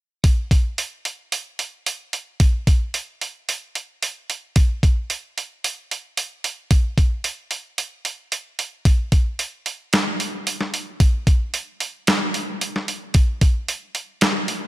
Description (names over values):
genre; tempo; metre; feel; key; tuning
rock; 112 BPM; 4/4; straight; none; none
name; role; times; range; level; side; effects
detuned 8-bit digital drum machine; drums; 0.2-14.6 s; hi-hat, kick drum, snare drum; -18 LUFS; equal; none
room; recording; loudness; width
light reverb; none; -20 LUFS; side -16 dB against mid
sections
0.2-14.7 A section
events
none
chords
none